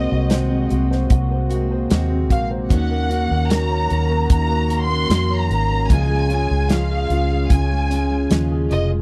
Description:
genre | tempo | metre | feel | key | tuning
pop ballad | 75 BPM | 4/4 | straight | unclear | A4 = 440 Hz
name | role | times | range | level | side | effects
warm symphonic violin section | melody | 0.0-8.9 s | Eb5 to C6 | -27 LUFS | equal | none
warm baby grand piano | accompaniment | 0.0-9.0 s | Db3 to Db5 | -28 LUFS | equal | none
chorused pulse-width pad | sustained chords | 0.0-9.0 s | C3 to Ab4 | -29 LUFS | equal | none
picked steel-string acoustic guitar | arpeggios | 0.0-9.0 s | Db3 to Gb4 | -32 LUFS | equal | none
vintage muted fingered electric bass | bass | 0.0-9.0 s | F1 to F2 | -22 LUFS | equal | none
natural country drum kit | drums | 0.3-8.9 s | hi-hat, kick drum, snare drum | -19 LUFS | equal | none
room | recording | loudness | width
small room ambience | dry, close 1970s-style studio recording | -19 LUFS | mono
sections
0.0-9.0 A section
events
none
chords
0.0 Ab7/C; 2.7 Ebm7; 5.9 Db

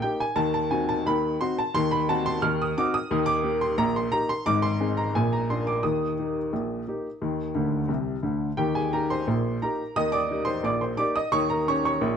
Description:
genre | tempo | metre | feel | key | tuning
ragtime piano | 88 BPM | 2/4 | straight | Eb major | A4 = 440 Hz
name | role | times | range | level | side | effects
clear upright piano | solo | 0.0-12.2 s | Ab1 to F6 | -23 LUFS | equal | none
room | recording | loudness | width
moderate studio reverb, RT60 0.9 s | dark, warm production | -23 LUFS | side -7 dB against mid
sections
0.0-8.6 A section; 8.6-12.2 B section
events
upright piano fill 7.5-8.6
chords
0.4 Ebdim7; 3.1 Eb; 4.5 Ab; 5.1 Bb; 5.8 Eb; 11.3 Eb7

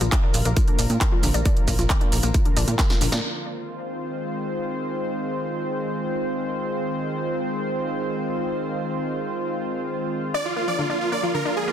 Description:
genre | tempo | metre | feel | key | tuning
uplifting trance | 135 BPM | 4/4 | straight | F dorian | A4 = 438 Hz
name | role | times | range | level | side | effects
lush unison pad | sustained chords | 0.0-11.7 s | D3 to C5 | -26 LUFS | equal | chorus, sidechain pumping
analog pluck | arpeggios | 0.0-3.2, 10.3-11.7 s | D3 to D4 | -30 LUFS | left 4 dB | chorus, sidechain pumping, digital delay
plucky analog bass | bass | 0.0-3.2 s | Bb1 to Bb2 | -23 LUFS | equal | sidechain pumping
big-room dance drum kit | drums | 0.0-3.2 s | handclaps, hi-hat, snare drum | -28 LUFS | equal | sidechain pumping on hats
maracas | percussion | 0.0-3.2 s | none | -32 LUFS | right 5 dB | none
electronic kick drum | drums | 0.1-2.9 s | none | -21 LUFS | equal | none
supersaw chords | melody | 10.3-11.7 s | F4 to D5 | -23 LUFS | right 2 dB | sidechain pumping, digital delay
room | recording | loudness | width
light reverb | dense, heavily limited modern master | -22 LUFS | side -10 dB against mid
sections
0.0-3.2 A section; 3.2-11.7 B section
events
drum fill 2.8-3.2; band accent 3.1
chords
0.0 Bb; 3.2 Fm7; 10.3 Bb

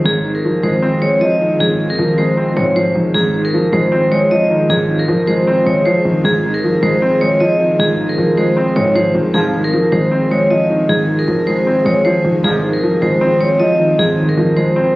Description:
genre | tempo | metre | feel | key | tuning
hip hop | 155 BPM | 4/4 | half-time | Ab major | A4 = 440 Hz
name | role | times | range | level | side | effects
felt-muted upright piano | accompaniment | 0.0-15.0 s | Ab2 to C4 | -16 LUFS | equal | low-pass filter
hard-hitting 808-style bass | bass | 0.0-14.9 s | G1 to Ab2 | -22 LUFS | equal | none
vibraphone with hard mallets | melody | 0.1-14.9 s | Ab4 to Eb5 | -15 LUFS | equal | auto-pan, low-pass filter, tape echo
ethereal airy pad | sustained chords | 0.1-15.0 s | Eb3 to Ab4 | -24 LUFS | equal | ensemble chorus, built-in reverb
clear brass ensemble | stabs | 9.3-9.7, 12.4-12.8 s | C2 to F3 | -23 LUFS | equal | none
room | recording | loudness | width
light reverb, small room ambience | recorded on a phone in the room, studio reverb | -12 LUFS | side -19 dB against mid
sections
0.0-3.1 A section; 3.1-15.0 B section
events
none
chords
0.0 Ab6

